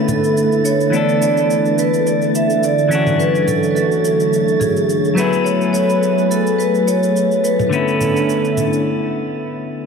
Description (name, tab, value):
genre	sunset chillout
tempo	106 BPM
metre	4/4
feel	swing 54% on 16ths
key	unclear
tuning	A4 = 440 Hz
part	clean electric guitar	accompaniment	0.0-9.9 s	D3 to A4	-20 LUFS	moving between left 6 dB and right 3 dB	auto-pan, dub echo
part	lush unison pad	sustained chords	0.0-8.8 s	D3 to C#5	-20 LUFS	right 1 dB	chorus
part	wind-like tuned noise texture	texture	0.0-8.9 s	A3 to A6	-26 LUFS	equal	built-in reverb
part	vibraphone with medium hard mallets	melody	0.1-8.8 s	G#4 to E5	-18 LUFS	right 1 dB	tape echo
part	electronic toms and shaker	drums	0.1-8.8 s	none	-28 LUFS	right 3 dB	overdrive
room	wet plate reverb, RT60 2.7 s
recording	echo-heavy mix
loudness	-14 LUFS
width	side -6 dB against mid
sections	0.0-9.9 A section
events	filter sweep on analog synth pad 0.0-9.9; break 8.9-9.9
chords	0.0 Bm11; 0.9 E7sus4; 2.9 Dmaj9; 5.2 F#m11; 7.7 Bm11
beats	0.36 | 0.93 1.50 2.06 2.63 | 3.19 3.76 4.33 4.89 | 5.46 6.03 6.59 7.16 | 7.72 8.29 8.86 9.42